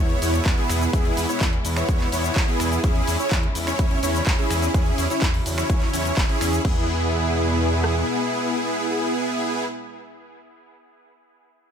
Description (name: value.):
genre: EDM, festival progressive house.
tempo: 126 BPM.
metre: 4/4.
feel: straight.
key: E major.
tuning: A4 = 440 Hz.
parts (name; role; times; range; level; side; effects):
rich studio string section; sustained chords; 0.0-9.6 s; B2 to E4; -32 LUFS; left 1 dB; sidechain pumping.
supersaw chords; riff; 0.0-9.6 s; B3 to C#5; -24 LUFS; equal; wide subtle chorus, sidechain pumping, dub echo.
wide detuned saw bass; bass; 0.0-8.0 s; E1 to E2; -25 LUFS; equal; chorus, sidechain pumping.
big-room dance drum kit; drums; 0.1-6.7 s; crash cymbal, finger snaps, handclaps, hi-hat, shaker; -29 LUFS; equal; studio reverb.
big-room dance drum kit; drums; 0.5-7.9 s; kick drum, rim click; -22 LUFS; equal; overdrive, studio reverb.
room: light reverb.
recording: none.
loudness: -19 LUFS.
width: side -8 dB against mid.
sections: 0.0-6.6 A section; 6.6-10.5 B section.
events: drop 0.0-6.6.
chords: 0.0 E; 2.8 C#m/E; 6.6 E.